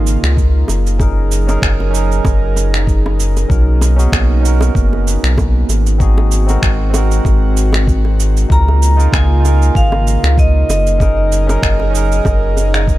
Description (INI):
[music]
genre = sunset chillout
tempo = 96 BPM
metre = 4/4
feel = swing 55% on 16ths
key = Db major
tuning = A4 = 441 Hz
[part]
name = barky tine electric piano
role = accompaniment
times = 0.0-13.0 s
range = C4 to Bb4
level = -22 LUFS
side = moving between left 5 dB and right 9 dB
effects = auto-pan, low-pass filter, digital delay
[part]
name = airy breathy pad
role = sustained chords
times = 0.0-13.0 s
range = Db3 to Bb4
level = -22 LUFS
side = right 1 dB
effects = chorus
[part]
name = concert harp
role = arpeggios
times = 0.0-1.4 s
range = none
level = barely audible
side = none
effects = none
[part]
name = warm sub bass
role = bass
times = 0.0-13.0 s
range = Gb1 to Db2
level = -13 LUFS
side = equal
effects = none
[part]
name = electronic cabasa and finger snaps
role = drums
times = 0.1-13.0 s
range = none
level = -22 LUFS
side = right 2 dB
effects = overdrive
[part]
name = bongos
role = percussion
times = 0.2-12.7 s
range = none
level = -25 LUFS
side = right 1 dB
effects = none
[part]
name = electronic kick drum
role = drums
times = 0.4-13.0 s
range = none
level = -15 LUFS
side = equal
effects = overdrive
[part]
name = vibraphone with hard mallets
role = melody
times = 8.5-13.0 s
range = Eb5 to Bb5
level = -19 LUFS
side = equal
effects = digital delay
[sound]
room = digital ambience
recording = none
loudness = -11 LUFS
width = side -16 dB against mid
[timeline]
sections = 0.0-13.0 A section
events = filter sweep on tine electric piano 0.0-13.0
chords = 0.0 Db69; 1.0 Gb69; 3.5 Cbmaj9; 6.0 Ab9; 8.5 Db69; 11.0 Gb69